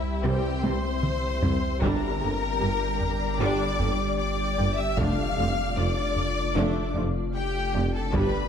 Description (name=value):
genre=cinematic, hybrid orchestral and electronic film score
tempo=76 BPM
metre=4/4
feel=straight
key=D minor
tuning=A4 = 440 Hz
part: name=warm symphonic violin section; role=melody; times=0.0-8.5 s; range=E5 to F6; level=-34 LUFS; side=left 5 dB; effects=none
part: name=rich studio violin section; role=second line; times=0.0-8.5 s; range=E4 to F5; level=-32 LUFS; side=left 4 dB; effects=none
part: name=evolving wavetable pad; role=sustained chords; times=0.0-8.5 s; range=G3 to E5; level=-33 LUFS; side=left 1 dB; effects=ensemble chorus, built-in reverb
part: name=saturated sub bass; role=bass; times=0.0-8.5 s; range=F1 to C2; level=-31 LUFS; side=equal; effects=none
part: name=warm symphonic viola section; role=accompaniment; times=0.2-8.5 s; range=D3 to D4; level=-34 LUFS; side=right 2 dB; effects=none
part: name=dark French horn section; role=sustained chords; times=0.2-8.4 s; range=C4 to G4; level=-37 LUFS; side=left 5 dB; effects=none
part: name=mellow trombone section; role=sustained chords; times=0.2-8.4 s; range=D3 to A3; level=-39 LUFS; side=right 2 dB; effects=none
part: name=analog pluck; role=arpeggios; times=0.2-8.4 s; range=C3 to G4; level=-40 LUFS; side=equal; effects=none
part: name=mellow tuba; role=bass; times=0.2-8.3 s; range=F1 to C2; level=-34 LUFS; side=right 2 dB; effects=none
part: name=warm studio double bass section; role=bass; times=0.2-8.2 s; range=F1 to C2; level=-33 LUFS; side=right 4 dB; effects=none
part: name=warm symphonic cello section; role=bass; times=0.2-8.2 s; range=F2 to C3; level=-34 LUFS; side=right 2 dB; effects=none
part: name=solo taiko drums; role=drums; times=0.6-8.5 s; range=none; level=-31 LUFS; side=equal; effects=none
room=moderate concert hall reverb, RT60 2.4 s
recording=none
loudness=-23 LUFS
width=side -8 dB against mid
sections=0.0-8.5 A section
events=drum fill 0.6-1.8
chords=0.0 C; 1.8 Gm; 5.0 Dm/F